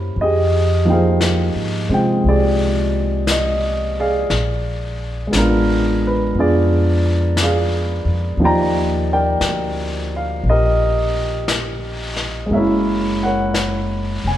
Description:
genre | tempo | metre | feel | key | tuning
jazz ballad | 58 BPM | 4/4 | swing 67% on 8ths | Eb major | A4 = 440 Hz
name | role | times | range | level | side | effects
warm grand piano | accompaniment | 0.0-14.4 s | F3 to Bb5 | -18 LUFS | right 1 dB | none
upright bass | bass | 0.0-14.4 s | F1 to C3 | -20 LUFS | equal | none
vintage brush drum kit | drums | 0.2-14.4 s | brushed snare drum, hi-hat, snare drum | -26 LUFS | left 3 dB | none
room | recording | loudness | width
moderate large studio reverb, RT60 1.4 s | band playing live in one room | -15 LUFS | side -12 dB against mid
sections
0.0-14.4 A section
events
none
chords
0.2 Fm9; 4.3 Bb7b9; 8.4 Ebmaj9; 12.5 Gb7

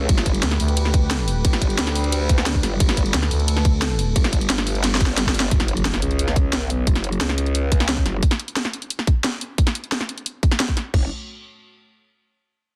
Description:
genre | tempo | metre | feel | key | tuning
dark technical drum and bass | 177 BPM | 4/4 | straight | F# phrygian | A4 = 437 Hz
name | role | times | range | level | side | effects
dark analog pad | sustained chords | 0.0-5.5, 10.9-11.1 s | A3 to B4 | -33 LUFS | equal | chorus, sidechain pumping
growl bass | bass | 0.0-8.2, 10.9-11.1 s | E1 to D2 | -25 LUFS | equal | chorus, overdrive
drum and bass drum kit | drums | 0.1-11.0 s | crash cymbal, kick drum, toms | -21 LUFS | equal | none
drum and bass drum kit | drums | 0.1-10.8 s | hi-hat, ride cymbal, snare drum | -25 LUFS | equal | none
growling FM bass | bass | 0.4-4.1 s | D2 | -23 LUFS | equal | none
impact | sound effects | 5.5-6.9 s | none | -32 LUFS | equal | none
room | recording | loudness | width
digital ambience | dense, heavily limited modern master | -21 LUFS | mono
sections
0.0-5.5 A section; 5.5-10.9 B section; 10.9-12.3 C section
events
drop 0.0-5.5; drum fill 4.8-5.5; impact 5.5-6.9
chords
0.1 Gadd9; 5.5 F#5; 10.9 F#m

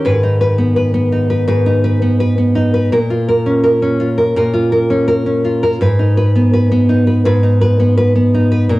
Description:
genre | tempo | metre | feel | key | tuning
indie pop | 83 BPM | 4/4 | straight | G# dorian | A4 = 438 Hz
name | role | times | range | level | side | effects
nylon-string guitar | solo | 0.0-8.8 s | G#2 to B4 | -11 LUFS | equal | lush chorus, vibrato effect, cassette tape
room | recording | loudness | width
wet studio reverb, RT60 0.5 s | home recording on cassette | -11 LUFS | side -18 dB against mid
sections
0.0-8.8 A section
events
none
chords
0.0 G#m; 2.9 A#m; 5.8 G#m

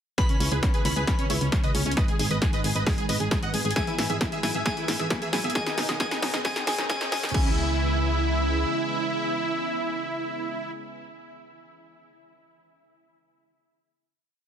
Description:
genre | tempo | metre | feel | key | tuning
uplifting trance | 134 BPM | 4/4 | straight | C# minor | A4 = 441 Hz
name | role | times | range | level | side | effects
dense compressed supersaw | melody | 0.2-10.7 s | C#4 to F#5 | -29 LUFS | right 1 dB | vintage 12-bit sampler grit, sidechain pumping, digital delay
glassy synth bell | second line | 0.2-10.7 s | G#4 to B5 | -33 LUFS | left 2 dB | chorus, digital delay
analog string pad | sustained chords | 0.2-10.7 s | C#3 to E4 | -34 LUFS | right 2 dB | ensemble chorus, sidechain pumping
wide unison pluck | arpeggios | 0.2-7.6 s | G#2 to E4 | -36 LUFS | equal | none
electronic kick drum | drums | 0.2-7.4 s | none | -26 LUFS | equal | overdrive, small room ambience
techno drum kit | drums | 0.2-7.4 s | crash cymbal, hi-hat, snare drum | -30 LUFS | equal | overdrive, small room ambience, sidechain pumping on hats, sidechain pumping on cymbals
riser | sound effects | 3.0-7.3 s | none | -40 LUFS | right 1 dB | none
solid FM bass | bass | 0.4-8.6 s | G#1 to C#2 | -28 LUFS | equal | sidechain pumping
room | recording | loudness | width
light reverb | dense, heavily limited modern master, high-pass filter | -23 LUFS | side -8 dB against mid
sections
0.2-7.3 build; 7.3-10.9 final chord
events
build-up 0.2-7.3; drum fill 0.2-7.3; filter sweep on synth arpeggio sound 0.2-7.3; filter sweep 0.2-7.3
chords
0.2 C#m7; 2.0 G#m; 3.8 E/G#; 5.6 Badd9; 7.3 C#m7

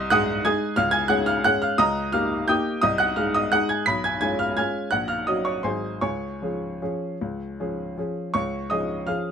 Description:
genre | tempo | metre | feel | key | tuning
classical, piano waltz | 150-188 BPM | 3/4 | rubato | Db major | A4 = 440 Hz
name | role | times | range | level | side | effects
clear upright piano | solo | 0.0-9.3 s | Ab1 to Cb7 | -21 LUFS | equal | none
room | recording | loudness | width
little or no reverb | close, detailed microphones | -22 LUFS | side -7 dB against mid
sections
0.0-8.3 A section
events
none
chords
0.0 Ab/C; 0.8 Db; 1.8 Eb7/Db; 2.8 Ab/C; 3.9 Db7/Cb; 4.9 Gb/Bb; 5.6 Ab7; 6.0 Db

